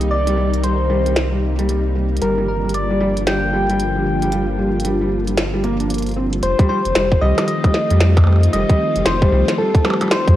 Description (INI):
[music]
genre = IDM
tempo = 114 BPM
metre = 4/4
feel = swing 62% on 16ths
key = unclear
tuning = A4 = 440 Hz
[part]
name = soft struck synth lead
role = melody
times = 0.0-10.4 s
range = A4 to G5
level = -21 LUFS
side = left 1 dB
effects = chorus, tape echo
[part]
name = soft string machine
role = sustained chords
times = 0.0-10.4 s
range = C3 to F4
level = -23 LUFS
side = equal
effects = ensemble chorus
[part]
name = felt-muted upright piano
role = arpeggios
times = 0.0-10.3 s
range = G3 to D4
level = -22 LUFS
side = equal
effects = ping-pong delay
[part]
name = warm sub bass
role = bass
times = 0.0-10.4 s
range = F1 to F2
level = -19 LUFS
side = equal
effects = none
[part]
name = glitchy drum kit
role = drums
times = 0.0-10.4 s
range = hi-hat, percussion blips, snare drum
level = -22 LUFS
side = equal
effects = overdrive
[part]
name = electronic kick drum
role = drums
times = 6.6-10.4 s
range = none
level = -14 LUFS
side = equal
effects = overdrive
[sound]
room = moderate echo chamber reverb, RT60 1.4 s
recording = worn, warbling old tape, cassette tape, warbly pitch drift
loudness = -15 LUFS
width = side -13 dB against mid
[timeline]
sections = 0.0-6.4 A section; 6.4-10.4 B section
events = none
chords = 0.0 Cm7; 2.2 Gm7; 6.4 F7